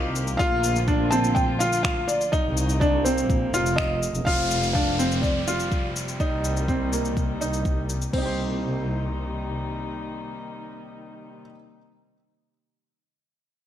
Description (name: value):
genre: piano and strings electronica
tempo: 124 BPM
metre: 4/4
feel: straight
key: C dorian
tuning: A4 = 440 Hz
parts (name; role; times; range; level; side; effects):
- felt-muted upright piano; melody; 0.0-11.4 s; C5 to A5; -28 LUFS; equal; none
- muted string quartet; sustained chords; 0.0-11.4 s; C3 to G4; -33 LUFS; left 1 dB; none
- clear baby grand piano; riff; 0.0-11.5 s; Bb3 to C5; -27 LUFS; right 1 dB; digital delay
- muted symphonic double bass section; bass; 0.0-9.5 s; F1 to C2; -28 LUFS; equal; sidechain pumping
- organic electronic drum kit; drums; 0.2-8.2 s; crash cymbal, finger snaps, shaker; -32 LUFS; left 3 dB; none
- electronic kick drum; drums; 0.4-8.2 s; none; -26 LUFS; equal; none
- downlifter; sound effects; 4.3-8.1 s; none; -32 LUFS; equal; none
room: light reverb, studio ambience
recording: none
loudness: -22 LUFS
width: side -10 dB against mid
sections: 0.0-4.3 A section; 4.3-8.1 B section; 8.1-12.0 C section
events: drop 0.0-4.3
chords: 0.4 Bbmaj7; 2.3 Cm7; 3.3 Bbsus2; 4.3 Fsus2; 6.2 Cm7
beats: | 0.39 0.88 1.36 1.84 | 2.33 2.81 3.30 3.78 | 4.26 4.75 5.23 5.72 | 6.20 6.68 7.17 7.65 | 8.13 8.62 9.10 9.59 | 10.07 10.55 11.04 11.52